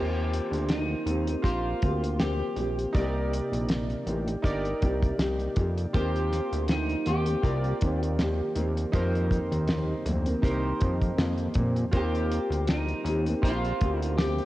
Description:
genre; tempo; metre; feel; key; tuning
indie pop, bedroom pop; 80 BPM; 4/4; swing 55% on 16ths; Eb major; A4 = 443 Hz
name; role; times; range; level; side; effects
electric guitar through a small old amp; melody; 0.0-14.5 s; Eb4 to G4; -33 LUFS; equal; wide subtle chorus, cassette tape, analog delay
chorused retro synth keys; accompaniment; 0.0-14.5 s; Eb4 to D5; -34 LUFS; right 2 dB; cassette tape
nylon-string guitar; accompaniment; 0.0-14.5 s; F2 to G4; -32 LUFS; left 1 dB; analog chorus, vibrato effect, cassette tape
fat analog bass; bass; 0.0-14.4 s; G1 to Bb2; -29 LUFS; equal; none
cloth-damped thuddy drum kit; drums; 0.3-14.5 s; hi-hat, kick drum, snare drum; -29 LUFS; equal; vintage 12-bit sampler grit
room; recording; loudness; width
light reverb, small room ambience; home recording on cassette; -25 LUFS; side -16 dB against mid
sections
0.0-14.5 A section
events
none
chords
0.0 Eb6; 2.9 Cm7; 5.9 Eb6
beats
0.69 1.44 2.19 | 2.94 3.69 4.44 5.19 | 5.94 6.69 7.43 8.18 | 8.93 9.68 10.43 11.18 | 11.93 12.68 13.43 14.18

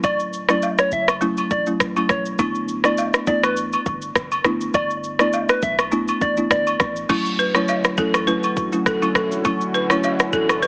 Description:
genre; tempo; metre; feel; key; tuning
afrobeats; 102 BPM; 4/4; swing 55% on 16ths; D major; A4 = 444 Hz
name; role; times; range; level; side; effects
soft struck synth lead; melody; 0.0-6.9 s; B4 to E5; -25 LUFS; equal; chorus, tape echo
clean 808-style bass; bass; 0.0-10.7 s; D1 to B1; -39 LUFS; equal; none
afro-pop drum kit; drums; 0.0-10.7 s; crash cymbal, kick drum, rim click, shaker; -24 LUFS; equal; none
agogo bells and woodblock; percussion; 0.0-10.6 s; none; -28 LUFS; equal; none
folk marimba with medium mallets; accompaniment; 0.5-10.1 s; F#3 to E4; -26 LUFS; equal; none
warm analog pad; sustained chords; 7.1-10.7 s; D3 to F#4; -31 LUFS; equal; subtle chorus
balafon; riff; 7.4-10.7 s; A4 to C#5; -25 LUFS; equal; none
room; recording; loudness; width
light reverb; heavily compressed radio sound, multiband compression, AM radio sound; -20 LUFS; mono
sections
0.0-7.1 A section; 7.1-10.7 B section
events
none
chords
0.0 Dmaj9; 2.4 G6; 7.1 Dmaj9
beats
| 0.04 0.62 1.21 1.80 | 2.39 2.98 3.57 4.15 | 4.74 5.33 5.92 6.51 | 7.09 7.68 8.27 8.86 | 9.45 10.04 10.62

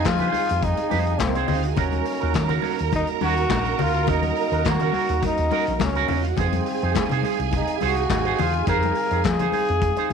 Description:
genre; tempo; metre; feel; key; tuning
disco; 104 BPM; 4/4; straight; unclear; A4 = 440 Hz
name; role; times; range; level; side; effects
bright trombone; melody; 0.0-10.1 s; C4 to Bb4; -25 LUFS; left 3 dB; none
clear studio string section; second line; 0.0-10.1 s; Bb3 to Bb5; -28 LUFS; right 12 dB; none
electric guitar with an envelope filter; accompaniment; 0.0-10.1 s; Db4 to C5; -28 LUFS; right 16 dB; none
dark French horn section; sustained chords; 0.0-10.1 s; C3 to F5; -32 LUFS; right 15 dB; stereo widening
hollow-body short-scale fingered electric bass; bass; 0.0-10.1 s; Ab1 to F3; -25 LUFS; equal; none
vintage drum kit; drums; 0.0-10.1 s; handclaps, hi-hat, kick drum, snare drum; -28 LUFS; left 4 dB; none
congas; percussion; 0.1-10.1 s; none; -31 LUFS; left 11 dB; none
room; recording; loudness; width
light reverb, small room ambience; 1960s-style stereo with parts hard left and right; -20 LUFS; side -6 dB against mid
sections
0.0-10.1 A section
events
none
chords
0.0 Fm7; 1.8 Ebm7; 6.4 Fm7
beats
0.05 0.63 1.20 | 1.78 2.35 2.92 3.50 | 4.07 4.65 5.22 5.80 | 6.37 6.95 7.52 8.10 | 8.67 9.24 9.82

